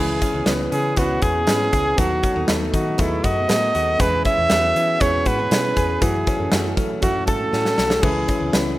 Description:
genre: jangly indie pop.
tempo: 119 BPM.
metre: 4/4.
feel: straight.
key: E major.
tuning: A4 = 445 Hz.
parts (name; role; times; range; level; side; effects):
warm trumpet; melody; 0.0-8.5 s; E4 to E5; -21 LUFS; right 2 dB; none.
picked steel-string acoustic guitar; accompaniment; 0.0-8.8 s; F#3 to B4; -32 LUFS; right 4 dB; none.
reed electric piano; accompaniment; 0.0-8.8 s; A3 to B4; -27 LUFS; right 2 dB; none.
direct-recorded clean electric guitar; arpeggios; 0.0-8.8 s; E3 to A4; -26 LUFS; left 5 dB; none.
vintage muted fingered electric bass; bass; 0.0-8.7 s; B1 to F#3; -27 LUFS; equal; none.
big rock drum kit; drums; 0.2-8.7 s; crash cymbal, hi-hat, kick drum, snare drum; -22 LUFS; equal; none.
room: light reverb, small room ambience.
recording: rough home demo mix.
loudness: -17 LUFS.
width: side -16 dB against mid.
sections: 0.0-8.8 A section.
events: drum fill 7.5-8.0.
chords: 0.0 C#m7; 2.0 B7/D#; 4.0 E6; 6.0 F#m7; 8.0 C#m7.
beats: 0.47 0.97 1.48 | 1.98 2.48 2.99 3.49 | 4.00 4.50 5.01 5.51 | 6.01 6.52 7.02 7.53 | 8.03 8.54.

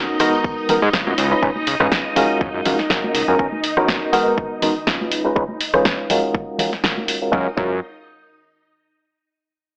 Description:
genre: filtered disco house.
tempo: 122 BPM.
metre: 4/4.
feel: swing 54% on 16ths.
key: F# major.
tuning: A4 = 439 Hz.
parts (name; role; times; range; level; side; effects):
reed electric piano; accompaniment; 0.0-7.8 s; G#3 to B4; -22 LUFS; equal; fast tremolo, phaser, sidechain pumping, low-pass filter.
string machine, full ensemble; sustained chords; 0.0-7.3 s; D#4 to D#5; -29 LUFS; equal; ensemble chorus, sidechain pumping, low-pass filter.
tambourine and congas; percussion; 0.1-7.3 s; none; -34 LUFS; equal; sidechain pumping on perc, low-pass filter on perc.
house drum kit; drums; 0.2-7.2 s; hi-hat, rim click, snare drum; -24 LUFS; equal; small room ambience.
electronic kick drum; drums; 0.4-7.7 s; none; -27 LUFS; equal; small room ambience.
fat analog bass; bass; 0.8-3.4, 7.3-7.8 s; C#2 to G#2; -24 LUFS; equal; tube saturation, sidechain pumping, low-pass filter.
room: moderate plate reverb, RT60 1.2 s, digital ambience.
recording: AM radio sound.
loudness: -19 LUFS.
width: mono.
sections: 0.0-7.3 A section; 7.3-9.3 B section.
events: filter sweep 0.0-7.3.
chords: 0.2 G#m7; 1.2 C#7; 2.2 F#maj7; 3.4 Bmaj7; 4.1 G#m7; 5.1 C#7; 6.1 F#maj7.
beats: 0.45 0.94 | 1.43 1.92 2.41 2.90 | 3.40 3.89 4.38 4.87 | 5.36 5.86 6.35 6.84 | 7.33.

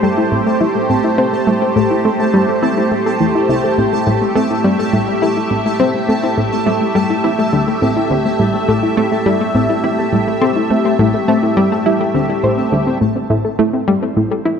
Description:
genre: ambient, sequencer-driven space music.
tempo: 104 BPM.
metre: 4/4.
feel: straight.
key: A minor.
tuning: A4 = 440 Hz.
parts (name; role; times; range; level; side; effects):
lush unison pad; sustained chords; 0.0-14.6 s; A3 to E5; -17 LUFS; right 1 dB; chorus, phaser.
soft round pluck; arpeggios; 0.0-14.6 s; G3 to E5; -19 LUFS; left 1 dB; chorus, auto-pan, cassette tape, ping-pong delay.
analog pluck; riff; 0.0-14.6 s; A2 to E4; -17 LUFS; left 1 dB; chorus, ping-pong delay.
pulsing gated texture; texture; 0.0-13.0 s; A5; -26 LUFS; right 3 dB; chorus, built-in reverb.
room: wet plate reverb, RT60 3.4 s.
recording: dark, warm production.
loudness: -13 LUFS.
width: side -7 dB against mid.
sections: 0.0-13.0 A section; 13.0-14.6 B section.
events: filter sweep on synth arpeggio sound 0.0-13.0.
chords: 0.0 Am7; 13.0 Am.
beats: 0.32 0.90 | 1.47 2.05 2.63 3.20 | 3.78 4.36 4.93 5.51 | 6.09 6.67 7.24 7.82 | 8.40 8.97 9.55 10.13 | 10.70 11.28 11.86 12.44 | 13.01 13.59 14.16.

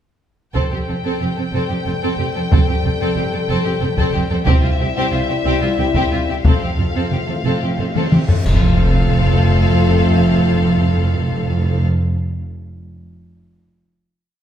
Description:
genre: cinematic, epic orchestral film score.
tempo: 61 BPM (dotted quarters).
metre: 6/8.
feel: straight.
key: F major.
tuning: A4 = 440 Hz.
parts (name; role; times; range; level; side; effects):
rich symphonic violin section; melody; 0.5-11.8 s; E5 to G5; -27 LUFS; left 4 dB; none.
rich symphonic violin section; second line; 0.5-11.8 s; F4 to A4; -26 LUFS; left 3 dB; none.
warm symphonic viola section; accompaniment; 0.5-11.8 s; C4; -25 LUFS; right 3 dB; none.
mellow French horn section; sustained chords; 0.5-11.8 s; G3 to A4; -24 LUFS; left 5 dB; none.
rich symphonic cello section; bass; 0.6-11.8 s; C2 to F2; -22 LUFS; right 2 dB; none.
warm symphonic double bass section; bass; 0.6-11.8 s; F1 to C2; -22 LUFS; right 3 dB; none.
taiko ensemble; drums; 0.6-8.6 s; none; -17 LUFS; equal; none.
cymbal swell, clash cymbals and concert bass drum; percussion; 4.5-9.7 s; none; -22 LUFS; equal; none.
timpani; percussion; 6.5-11.9 s; F2; -20 LUFS; equal; none.
reverse cymbal and impact; sound effects; 8.1-10.4 s; none; -26 LUFS; equal; none.
room: wet recital hall reverb, RT60 1.6 s.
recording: recorded in a church or concert hall.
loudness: -14 LUFS.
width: side -10 dB against mid.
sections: 0.6-8.5 theme; 8.5-12.4 final chord.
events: drum fill 8.0-8.5; reverse cymbal 8.1-8.5; band accent 8.5-9.1; impact 8.5-10.4.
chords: 0.6 Fadd9; 4.5 C; 6.5 F.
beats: | 0.55 1.54 | 2.52 3.50 | 4.47 5.45 | 6.45 7.46 | 8.46 9.44 | 10.43 11.41.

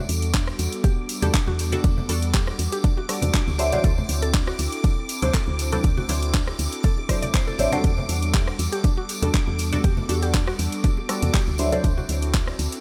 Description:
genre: deep house.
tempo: 120 BPM.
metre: 4/4.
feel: swing 54% on 16ths.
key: E minor.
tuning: A4 = 440 Hz.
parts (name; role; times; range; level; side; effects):
hollow soft pad; sustained chords; 0.0-12.8 s; G3 to A4; -36 LUFS; equal; chorus, sidechain pumping.
string machine, violins; texture; 0.0-12.8 s; D6; -38 LUFS; equal; ensemble chorus, sidechain pumping.
woody FM bass; bass; 0.1-12.7 s; A1 to E2; -28 LUFS; equal; tube saturation, sidechain pumping.
house drum kit; drums; 0.1-12.8 s; handclaps, hi-hat, rim click; -32 LUFS; equal; none.
tambourine; percussion; 0.1-12.8 s; none; -39 LUFS; equal; none.
mallet-like synth pluck; arpeggios; 0.3-12.4 s; D4 to D5; -36 LUFS; equal; chorus, sidechain pumping, tape echo.
electronic kick drum; drums; 0.3-12.4 s; none; -23 LUFS; equal; none.
filtered dub chord stab; stabs; 1.2-11.9 s; F#3 to C5; -31 LUFS; equal; phaser, subtle chorus, sidechain pumping, tape echo.
congas and bongos; percussion; 1.2-12.1 s; none; -35 LUFS; equal; none.
room: little or no reverb.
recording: none.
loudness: -23 LUFS.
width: mono.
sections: 0.0-12.8 A section.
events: none.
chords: 0.0 Em11; 3.6 D9; 7.8 Em11; 11.6 D9.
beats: 0.34 0.84 1.34 | 1.84 2.34 2.84 3.34 | 3.84 4.34 4.84 5.34 | 5.84 6.34 6.84 7.34 | 7.84 8.34 8.84 9.34 | 9.84 10.34 10.84 11.34 | 11.84 12.34.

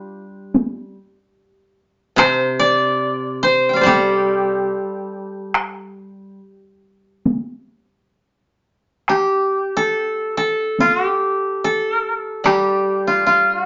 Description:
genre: japanese traditional, Japanese chamber music.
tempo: 70 BPM.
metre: 4/4.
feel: uneven beats, rubato.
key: G suspended pentatonic.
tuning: A4 = 438 Hz.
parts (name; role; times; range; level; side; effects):
koto; melody; 0.0-13.7 s; F4 to G5; -19 LUFS; equal; none.
koto; accompaniment; 0.0-6.4, 12.4-13.7 s; C3 to D4; -28 LUFS; equal; none.
taiko ensemble; percussion; 0.5-12.7 s; none; -21 LUFS; equal; none.
room: moderate studio reverb, RT60 0.7 s.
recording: nothing above 7.6 kHz.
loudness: -18 LUFS.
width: mono.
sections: 0.0-9.1 A section; 9.1-13.7 B section.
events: none.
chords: none.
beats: 0.54 1.36 | 2.18 3.02 3.85 4.69 | 5.53 6.38 7.26 8.17 | 9.07 9.94 10.79 11.63 | 12.47 13.29.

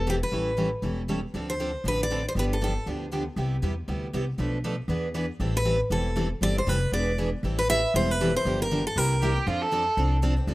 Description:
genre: acoustic string swing (jazz manouche).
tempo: 236 BPM.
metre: 4/4.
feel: swing 56% on 8ths.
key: A minor.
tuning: A4 = 440 Hz.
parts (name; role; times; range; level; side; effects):
picked steel-string acoustic guitar; melody; 0.0-2.9, 5.6-9.4 s; G4 to E5; -27 LUFS; equal; none.
upright bass; bass; 0.0-10.5 s; E1 to F2; -28 LUFS; equal; none.
picked steel-string acoustic guitar; accompaniment; 0.1-10.5 s; B2 to A4; -33 LUFS; left 2 dB; none.
picked steel-string acoustic guitar; accompaniment; 0.1-10.5 s; B2 to B4; -33 LUFS; right 3 dB; none.
warm violin; second line; 9.2-10.1 s; F4 to A4; -27 LUFS; right 2 dB; none.
room: small room ambience.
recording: rough home demo mix.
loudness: -24 LUFS.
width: side -18 dB against mid.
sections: 0.0-7.4 A section; 7.4-10.5 B section.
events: none.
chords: 0.3 A7; 1.3 Dm7; 2.4 G7; 3.4 Cmaj7; 4.4 Bm7b5; 4.9 E7; 5.4 Am9; 6.9 E7; 7.4 Am9; 8.5 Gm7; 9.0 C7; 9.5 F6.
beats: 0.07 | 0.32 0.58 0.83 1.09 | 1.34 1.59 1.85 2.10 | 2.36 2.61 2.87 3.12 | 3.37 3.63 3.88 4.13 | 4.39 4.64 4.90 5.15 | 5.41 5.66 5.91 6.17 | 6.42 6.68 6.93 7.18 | 7.44 7.69 7.95 8.20 | 8.46 8.71 8.96 9.22 | 9.47 9.73 9.98 10.23 | 10.49.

